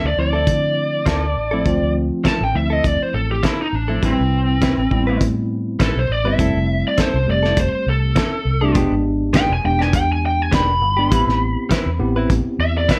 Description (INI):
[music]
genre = straight-eighth soul blues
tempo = 102 BPM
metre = 4/4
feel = swing 54% on 16ths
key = A minor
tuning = A4 = 441 Hz
[part]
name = lead guitar through a small cranked amp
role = melody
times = 0.0-13.0 s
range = C4 to B5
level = -23 LUFS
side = equal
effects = overdrive
[part]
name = direct-recorded clean electric guitar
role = stabs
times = 0.0-13.0 s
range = F3 to B4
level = -28 LUFS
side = equal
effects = slapback echo
[part]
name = vintage muted fingered electric bass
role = bass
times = 0.0-12.9 s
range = E1 to D3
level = -23 LUFS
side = equal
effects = none
[part]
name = mellow tine electric piano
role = accompaniment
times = 0.2-12.9 s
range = F3 to A5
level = -25 LUFS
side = equal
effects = none
[part]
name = cloth-damped thuddy drum kit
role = drums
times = 0.5-13.0 s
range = hi-hat, kick drum, snare drum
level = -23 LUFS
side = equal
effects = none
[sound]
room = moderate studio ambience, RT60 0.5 s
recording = none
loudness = -18 LUFS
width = mono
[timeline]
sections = 0.0-13.0 A section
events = lead electric guitar solo 0.0-13.0; tine electric piano fill 0.8-1.7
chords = 0.0 Dm9; 4.0 Am9; 6.4 Fmaj7; 8.8 E7#9; 11.1 Am9